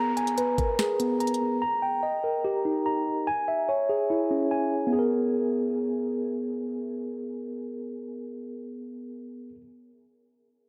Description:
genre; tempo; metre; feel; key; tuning
hip hop, trap; 145 BPM; 4/4; half-time; G# harmonic minor; A4 = 440 Hz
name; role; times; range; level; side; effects
mellow tine electric piano; arpeggios; 0.0-9.6 s; B3 to A#5; -28 LUFS; equal; low-pass filter, tape echo
downlifter; sound effects; 0.0-1.6 s; none; -50 LUFS; equal; none
trap drum kit; drums; 0.2-1.4 s; finger snaps, hi-hat, kick drum, snare drum; -33 LUFS; equal; none
room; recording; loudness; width
light reverb, digital ambience; none; -27 LUFS; mono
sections
0.0-4.9 A section; 4.9-8.2 B section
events
none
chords
0.0 G#madd9; 1.6 D#; 3.3 C#m; 4.9 G#madd9

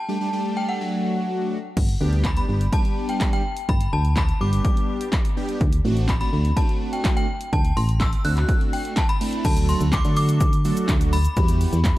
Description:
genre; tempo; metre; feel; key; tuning
dance-pop; 125 BPM; 4/4; straight; unclear; A4 = 441 Hz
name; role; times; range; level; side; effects
synth chime; melody; 0.0-12.0 s; F#5 to F#6; -29 LUFS; left 1 dB; ensemble chorus, tremolo, tape echo
big bright polysynth; accompaniment; 0.1-11.8 s; F#3 to A4; -27 LUFS; right 1 dB; chorus, sidechain pumping
solid FM bass; bass; 1.8-11.9 s; G1 to D3; -21 LUFS; equal; sidechain pumping
punchy analog drum machine; drums; 1.8-12.0 s; crash cymbal, handclaps, hi-hat, kick drum, shaker, snare drum; -22 LUFS; equal; none
room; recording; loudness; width
little or no reverb; dark, warm production; -19 LUFS; side -16 dB against mid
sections
0.0-1.8 A section; 1.8-9.4 B section; 9.4-12.0 C section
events
break 0.0-1.8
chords
0.0 Gsus2; 0.8 D; 1.8 G; 5.6 D7; 9.4 D; 11.4 Emadd9

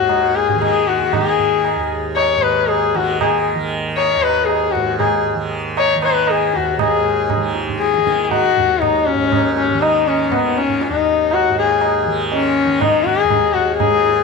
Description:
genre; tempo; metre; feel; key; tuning
indian classical, Hindustani; 118 BPM; 4/4; straight; Eb raga malkauns; A4 = 440 Hz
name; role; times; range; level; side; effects
dark sarangi; melody; 0.0-14.2 s; Cb4 to Db5+20c; -16 LUFS; left 9 dB; none
tanpura; drone; 0.0-14.2 s; Eb2 to Eb3; -23 LUFS; right 2 dB; none
tabla; percussion; 0.1-14.2 s; none; -22 LUFS; right 13 dB; none
room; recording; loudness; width
moderate echo chamber reverb, RT60 2.4 s; 1960s-style stereo with parts hard left and right; -14 LUFS; side -4 dB against mid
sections
0.0-6.8 A section; 6.8-14.2 B section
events
speeding up 0.0-14.2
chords
none

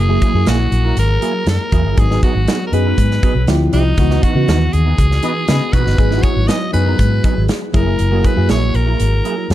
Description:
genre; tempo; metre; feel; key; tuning
polished 1980s jazz-funk pop; 120 BPM; 4/4; straight; G# minor; A4 = 440 Hz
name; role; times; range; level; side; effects
raspy alto saxophone; melody; 0.0-9.5 s; D#4 to D#5; -22 LUFS; left 1 dB; none
FM electric piano; accompaniment; 0.0-9.5 s; E3 to G#4; -21 LUFS; left 1 dB; wide subtle chorus
vintage muted fingered electric bass; bass; 0.0-9.5 s; F#1 to C#3; -15 LUFS; equal; none
semi-hollow electric guitar; riff; 0.1-9.5 s; E3 to A#4; -25 LUFS; right 7 dB; ensemble chorus
modern studio drum kit; drums; 0.2-9.5 s; hi-hat, kick drum, snare drum; -17 LUFS; equal; none
mellow horn section; second line; 5.2-5.8 s; B3 to D#5; -24 LUFS; left 5 dB; none
room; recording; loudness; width
studio reverb; dark, warm production; -12 LUFS; side -13 dB against mid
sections
0.0-9.5 A section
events
band accent 4.0-6.0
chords
0.0 F#9; 2.0 G#m7; 3.5 Dm11; 4.0 C#m11; 6.0 G#m7; 7.7 F#9

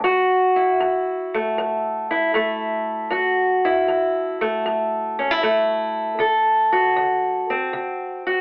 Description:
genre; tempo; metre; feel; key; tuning
blues; 78 BPM; 4/4; swing 68% on 8ths; F# minor; A4 = 440 Hz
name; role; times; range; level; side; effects
fingerpicked steel-string acoustic guitar; solo; 0.0-8.4 s; F#2 to A4; -21 LUFS; equal; none
room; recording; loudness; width
moderate studio reverb, RT60 0.6 s; telephone sound; -21 LUFS; mono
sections
0.0-8.4 A section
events
none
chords
0.0 F#m7; 6.2 D7

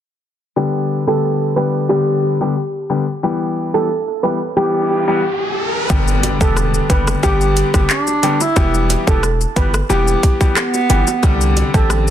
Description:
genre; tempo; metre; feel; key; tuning
dancehall; 90 BPM; 4/4; straight; unclear; A4 = 440 Hz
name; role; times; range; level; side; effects
bright grand piano; accompaniment; 0.6-12.1 s; C3 to G4; -19 LUFS; left 3 dB; none
steel pan; melody; 1.1-11.9 s; G4 to B4; -20 LUFS; right 2 dB; tape echo
riser and impact; sound effects; 4.5-8.6 s; none; -24 LUFS; equal; none
hard-hitting 808-style bass; bass; 5.9-12.1 s; E1 to C2; -17 LUFS; equal; none
island pop drum kit; drums; 5.9-12.1 s; handclaps, hi-hat, kick drum, rim click, shaker; -16 LUFS; equal; overdrive
bongos; percussion; 5.9-11.7 s; none; -28 LUFS; right 8 dB; none
warm bass clarinet; second line; 7.9-11.5 s; B3 to E4; -19 LUFS; right 2 dB; tape echo
room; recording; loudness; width
light reverb, small room reverb; dense, heavily limited modern master, low-pass filter; -14 LUFS; side -10 dB against mid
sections
0.6-5.9 A section; 5.9-12.1 B section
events
filter sweep 0.6-5.9; riser 4.5-5.9; impact 5.9-8.6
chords
0.6 G; 3.2 Em; 5.9 G; 8.6 Em; 11.2 Csus2

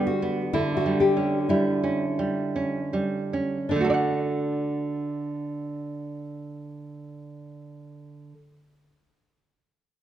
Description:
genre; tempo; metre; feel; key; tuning
romantic duo for nylon-string guitar and classical guitar; 49-66 BPM; 3/4; rubato; D major; A4 = 440 Hz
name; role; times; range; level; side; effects
nylon-string guitar; melody; 0.0-8.3 s; D4 to G4; -27 LUFS; left 3 dB; tape echo
nylon-string guitar; accompaniment; 0.0-8.6 s; D3 to F#5; -26 LUFS; right 2 dB; none
room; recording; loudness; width
moderate recital hall reverb, RT60 1.5 s; dark, warm production; -23 LUFS; side -11 dB against mid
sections
0.0-3.7 A section; 3.7-7.0 B section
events
slowing down 0.0-3.7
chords
0.0 G/D; 0.5 Em13/D; 3.7 D

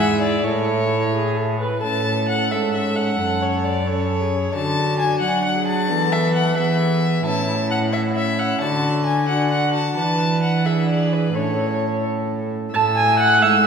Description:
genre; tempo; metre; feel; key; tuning
classical, renaissance-style consort dance; 88 BPM (dotted quarters); 6/8; straight; A major; A4 = 440 Hz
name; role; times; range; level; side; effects
warm violin; melody; 0.0-13.7 s; B4 to E6; -23 LUFS; left 2 dB; none
dark viola; second line; 0.0-13.7 s; E4 to A5; -23 LUFS; right 2 dB; none
mellow trombone; accompaniment; 0.0-13.7 s; A3 to E4; -26 LUFS; left 2 dB; none
rich cello; bass; 0.0-13.7 s; F#2 to F#3; -22 LUFS; right 1 dB; none
room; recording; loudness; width
wet concert hall reverb, RT60 2.3 s; heard from further back in the room; -17 LUFS; side -6 dB against mid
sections
0.0-1.8 A section; 1.8-12.7 B section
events
none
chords
0.4 A; 3.2 F#m; 4.5 D; 5.9 Esus4; 7.3 A; 8.6 D; 10.0 E7sus4; 11.4 A; 12.7 A5

